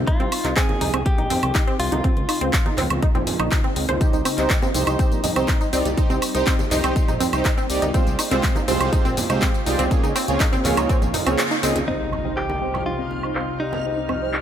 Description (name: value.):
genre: progressive house.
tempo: 122 BPM.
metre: 4/4.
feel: straight.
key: C minor.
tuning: A4 = 440 Hz.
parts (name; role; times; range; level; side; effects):
shimmering ambient pad; sustained chords; 0.0-14.4 s; C3 to G5; -31 LUFS; left 2 dB; none.
fat analog bass; bass; 0.0-14.4 s; Bb1 to Db2; -27 LUFS; equal; sidechain pumping.
direct-recorded clean electric guitar; melody; 0.1-2.7, 11.9-14.4 s; Eb4 to Ab4; -27 LUFS; left 2 dB; spring reverb, sidechain pumping, ping-pong delay.
wide unison pluck; arpeggios; 0.1-14.4 s; C4 to C5; -26 LUFS; right 1 dB; sidechain pumping, ping-pong delay.
deep house drum kit; drums; 0.1-14.4 s; handclaps, hi-hat, tambourine, woodblock; -26 LUFS; right 1 dB; low-pass filter on snare, low-pass filter on hats, low-pass filter on perc, low-pass filter on room.
electronic kick drum; drums; 0.1-11.0 s; none; -20 LUFS; equal; none.
congas; percussion; 0.7-14.2 s; none; -31 LUFS; right 3 dB; sidechain pumping on perc.
soft supersaw; stabs; 4.0-14.3 s; Ab3 to Eb5; -25 LUFS; right 3 dB; sidechain pumping, low-pass filter, ping-pong delay.
impact; sound effects; 11.9-13.8 s; none; -34 LUFS; equal; none.
backwards swelling texture; texture; 12.3-14.4 s; F6; -37 LUFS; right 1 dB; built-in reverb, sidechain pumping.
room: light reverb.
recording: none.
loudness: -18 LUFS.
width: side -10 dB against mid.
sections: 0.0-11.9 A section; 11.9-14.4 B section.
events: kick drops out 11.4-11.9; band accent 11.4; impact 11.9-13.8; filter sweep on drum 11.9-14.4; filter sweep on supersaw synth 11.9-14.4.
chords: 0.1 Fmadd9/C; 2.0 Db6; 4.0 Cm; 7.9 Fmadd9/C; 9.9 Db6; 11.9 Cm.